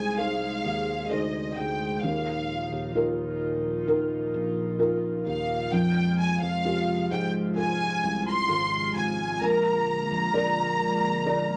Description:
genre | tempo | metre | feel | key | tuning
pop ballad | 65 BPM | 4/4 | straight | unclear | A4 = 441 Hz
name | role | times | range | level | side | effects
dark studio violin section | melody | 0.0-11.6 s | Eb5 to C6 | -31 LUFS | equal | none
felt-muted upright piano | accompaniment | 0.0-11.6 s | Eb3 to D5 | -30 LUFS | equal | none
airy breathy pad | sustained chords | 0.0-11.6 s | Bb2 to Ab4 | -35 LUFS | equal | chorus
sustaining fretless electric bass | bass | 0.0-11.6 s | Ab1 to Ab2 | -36 LUFS | equal | none
room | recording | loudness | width
wet studio reverb, RT60 0.6 s | none | -27 LUFS | mono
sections
0.0-11.6 A section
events
felt piano fill 11.3-11.6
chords
0.0 Ab; 2.0 Ebsus2; 5.7 Fmadd9; 9.4 Bb7

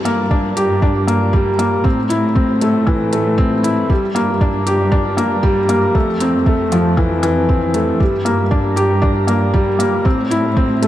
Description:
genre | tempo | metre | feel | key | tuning
piano and strings electronica | 117 BPM | 4/4 | straight | G dorian | A4 = 438 Hz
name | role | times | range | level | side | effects
muted studio cello section | bass | 0.0-10.9 s | F2 to A2 | -19 LUFS | equal | sidechain pumping
felt-muted upright piano | riff | 0.1-10.9 s | E3 to G4 | -16 LUFS | equal | digital delay, shimmer reverb
electronic hi-hat | drums | 0.1-10.9 s | none | -28 LUFS | equal | studio reverb
electronic kick drum | drums | 0.3-10.7 s | none | -16 LUFS | equal | studio reverb
room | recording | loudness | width
moderate huge ambient reverb, RT60 4.0 s | dark, warm production | -13 LUFS | side -13 dB against mid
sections
0.0-10.9 A section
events
none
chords
0.0 Gm; 1.9 Am; 3.9 Gm; 6.0 Fmaj7; 8.0 Gm; 10.1 Am

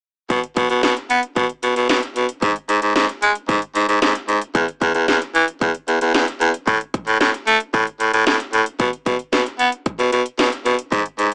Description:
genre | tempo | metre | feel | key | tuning
synth-pop | 113 BPM | 4/4 | straight | unclear | A4 = 439 Hz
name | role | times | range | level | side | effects
raspy baritone saxophone | bass | 0.3-11.3 s | E2 to B3 | -18 LUFS | equal | none
house drum kit | drums | 0.3-11.3 s | hi-hat, kick drum, snare drum | -25 LUFS | equal | none
room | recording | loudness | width
little or no reverb | dry, gritty hardware recording, transformer saturation, small speaker sound | -19 LUFS | mono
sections
0.3-8.8 A section; 8.8-11.3 B section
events
none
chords
none

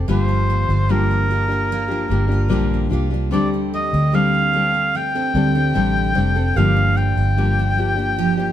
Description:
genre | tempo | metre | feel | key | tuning
acoustic pop | 74 BPM | 4/4 | straight | G minor | A4 = 440 Hz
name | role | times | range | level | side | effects
nylon-string guitar | accompaniment | 0.0-8.5 s | G2 to A4 | -22 LUFS | left 4 dB | none
picked steel-string acoustic guitar | arpeggios | 0.0-8.5 s | F3 to G4 | -27 LUFS | right 6 dB | none
vintage muted fingered electric bass | bass | 0.0-8.5 s | F1 to D2 | -20 LUFS | right 1 dB | none
warm oboe | melody | 0.1-8.5 s | Bb4 to G5 | -22 LUFS | equal | none
warm upright piano | accompaniment | 3.3-8.5 s | Bb3 to F5 | -31 LUFS | left 5 dB | none
room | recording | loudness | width
moderate stone room reverb, RT60 1.1 s | band playing live in one room | -16 LUFS | side -11 dB against mid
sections
0.0-8.5 A section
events
none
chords
0.1 Gm7; 3.3 D7sus4; 6.6 Gm7

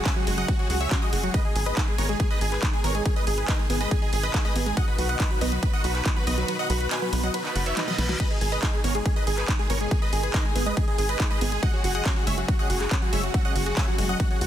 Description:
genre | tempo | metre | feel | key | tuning
uplifting trance | 140 BPM | 4/4 | straight | G# minor | A4 = 440 Hz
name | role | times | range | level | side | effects
big supersaw lead | melody | 0.0-14.5 s | F#4 to G#5 | -31 LUFS | right 1 dB | phaser, sidechain pumping, digital delay
wide unison pluck | second line | 0.0-14.5 s | F#4 to G#5 | -36 LUFS | right 1 dB | phaser, sidechain pumping, digital delay
dark studio string section | sustained chords | 0.0-14.5 s | B2 to G#4 | -34 LUFS | left 2 dB | sidechain pumping
tight sequenced synth | arpeggios | 0.0-14.5 s | F#3 to D#5 | -32 LUFS | right 2 dB | chorus, sidechain pumping, digital delay
big-room dance drum kit | drums | 0.1-14.5 s | crash cymbal, handclaps, hi-hat, ride cymbal, snare drum | -32 LUFS | right 1 dB | none
electronic kick drum | drums | 0.1-14.3 s | none | -25 LUFS | equal | none
tight sequencer bass | bass | 0.3-14.5 s | F#1 to C#2 | -27 LUFS | equal | sidechain pumping
reverse cymbal | sound effects | 7.5-8.2 s | none | -34 LUFS | equal | none
room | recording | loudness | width
little or no reverb | dense, heavily limited modern master | -22 LUFS | side -11 dB against mid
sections
0.0-14.5 A section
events
kick drops out 6.5-8.2; reverse cymbal 7.5-8.2; drum fill 7.8-8.2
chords
0.0 F#sus2; 1.3 G#m; 4.8 B; 8.2 G#m; 11.6 F#sus2

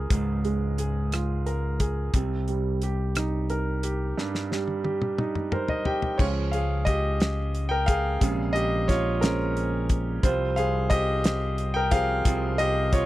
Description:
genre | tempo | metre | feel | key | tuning
six-eight pop ballad | 59 BPM (dotted quarters) | 6/8 | straight | unclear | A4 = 440 Hz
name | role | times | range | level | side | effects
clear grand piano | accompaniment | 0.0-13.1 s | G2 to G5 | -26 LUFS | right 1 dB | none
modern bright fingered electric bass | bass | 0.0-13.1 s | Bb1 to Db2 | -27 LUFS | left 1 dB | none
damped 70s drum kit | drums | 0.1-13.1 s | crash cymbal, hi-hat, kick drum, rim click, snare drum, toms | -26 LUFS | equal | none
room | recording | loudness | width
little or no reverb | dry, close 1970s-style studio recording | -23 LUFS | side -15 dB against mid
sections
0.0-6.2 A section; 6.2-13.1 B section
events
drum fill 4.2-6.2; grand piano fill 5.2-6.2; grand piano solo 6.2-13.1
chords
0.0 Db6; 2.1 Cm7; 6.2 Db; 8.2 Bbm7; 10.2 Fsus2/C

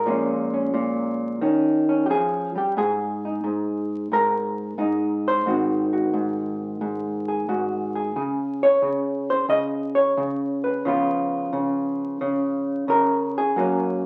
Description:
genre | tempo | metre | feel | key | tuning
solo jazz | 89 BPM | 4/4 | swing 69% on 8ths | unclear | A4 = 440 Hz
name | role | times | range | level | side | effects
hollow-body jazz guitar | solo | 0.0-14.1 s | Gb2 to Eb5 | -23 LUFS | equal | none
room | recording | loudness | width
wet large studio reverb, RT60 1.0 s | very old 78 rpm record, vinyl crackle | -23 LUFS | mono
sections
0.0-14.1 A section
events
none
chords
0.1 Bbm7; 1.4 Eb7; 2.8 Absus2; 5.4 Ab7; 8.1 Db5; 10.8 Db7; 13.6 Gb

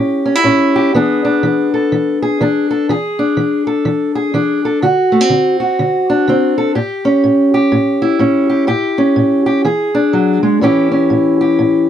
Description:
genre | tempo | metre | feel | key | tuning
blues | 124 BPM | 4/4 | swing 61% on 8ths | A mixolydian | A4 = 440 Hz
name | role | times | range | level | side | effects
fingerpicked steel-string acoustic guitar | solo | 0.0-11.9 s | A2 to A4 | -11 LUFS | equal | none
room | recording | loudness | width
little or no reverb | dry, close 1970s-style studio recording | -11 LUFS | side -10 dB against mid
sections
0.0-10.6 A section; 10.6-11.9 B section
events
none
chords
0.0 A7; 0.9 E7; 4.8 D7; 6.8 A7; 9.7 E7; 10.6 A7

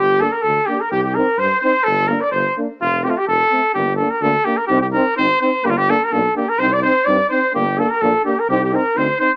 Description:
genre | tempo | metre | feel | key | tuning
balkan folk | 127 BPM | 2/4 | swing 56% on 16ths | unclear | A4 = 436 Hz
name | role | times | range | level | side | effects
warm trumpet | melody | 0.0-9.3 s | F4 to D5 | -19 LUFS | equal | plate reverb
bright clarinet | second line | 0.0-3.7, 6.6-9.3 s | F4 to D5 | -24 LUFS | equal | none
mellow tuba | bass | 0.0-9.1 s | F1 to G2 | -26 LUFS | equal | none
clear euphonium | accompaniment | 0.2-9.3 s | A3 to C4 | -25 LUFS | equal | none
dark euphonium | accompaniment | 0.2-9.3 s | C4 to Eb4 | -28 LUFS | equal | none
room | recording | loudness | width
moderate booth ambience, RT60 0.2 s | small speaker sound | -17 LUFS | mono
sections
0.0-3.8 A section; 3.8-9.4 A section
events
none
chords
0.0 Gm; 0.9 Cm; 1.9 Gm; 2.8 F; 3.8 Gm; 4.7 Cm; 5.6 Gm; 6.6 Cm; 7.5 Gm; 8.5 Cm

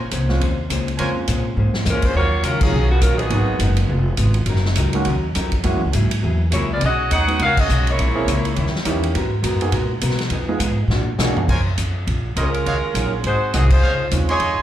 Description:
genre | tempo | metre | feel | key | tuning
jazz, big band swing | 206 BPM | 4/4 | swing 60% on 8ths | Eb minor, Bb minor from 11.5 s | A4 = 442 Hz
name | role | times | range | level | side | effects
vintage hollow-body jazz guitar | accompaniment | 0.0-11.4 s | Ab2 to C5 | -27 LUFS | left 2 dB | plate reverb, slapback echo
upright bass | bass | 0.0-14.6 s | F1 to Cb3 | -19 LUFS | equal | none
swinging big-band drum kit | drums | 0.1-14.5 s | crash cymbal, hi-hat, kick drum, ride cymbal, snare drum, toms | -25 LUFS | equal | none
warm concert grand piano | accompaniment | 0.3-14.3 s | Gb3 to Ab4 | -26 LUFS | right 3 dB | plate reverb, slapback echo
bright trumpet section | stabs | 1.0-1.1, 11.5-14.6 s | Gb4 to C6 | -25 LUFS | right 2 dB | plate reverb, slapback echo
warm saxophone section | melody | 1.9-3.6, 6.5-8.8, 12.4-14.6 s | Db3 to F#5 | -21 LUFS | equal | plate reverb, slapback echo
room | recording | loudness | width
light reverb | live gig heard through the venue's PA, club reverb | -16 LUFS | side -12 dB against mid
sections
0.0-2.1 A section; 2.1-11.5 B section; 11.5-14.6 A section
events
drum fill 1.6, 10.9-11.5; band accent 2.6, 7.5, 13.7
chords
0.0 Bbm9; 2.1 Ebm9; 3.3 Abm7; 3.9 Db7; 4.5 Gb6; 5.6 Gb9; 6.8 B69; 8.0 Bbm7b5; 8.6 Eb7b9; 9.1 Abm9; 10.3 Fm7b5; 10.9 Bb7alt; 11.5 Bbm9; 12.6 Ebm9; 13.2 Ab7; 13.8 Dbmaj9

